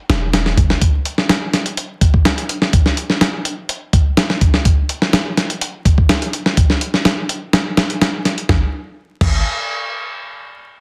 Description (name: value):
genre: breakbeat, breaks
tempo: 125 BPM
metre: 4/4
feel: straight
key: unclear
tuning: A4 = 439 Hz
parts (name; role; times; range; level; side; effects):
- warm 808-style bass; bass; 0.1-0.7, 8.5-9.4 s; E1 to G#1; -19 LUFS; equal; none
- dusty soul sampler-style drum kit; drums; 0.1-9.3 s; crash cymbal, hi-hat, kick drum, snare drum; -17 LUFS; equal; none
room: light reverb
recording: dense, heavily limited modern master, vinyl crackle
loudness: -17 LUFS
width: mono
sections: 0.0-8.5 A section; 8.5-10.4 B section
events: none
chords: none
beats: 0.33 | 0.81 1.29 1.77 2.25 | 2.73 3.21 3.69 4.17 | 4.65 5.13 5.61 6.09 | 6.57 7.05 7.53 8.01 | 8.49 8.97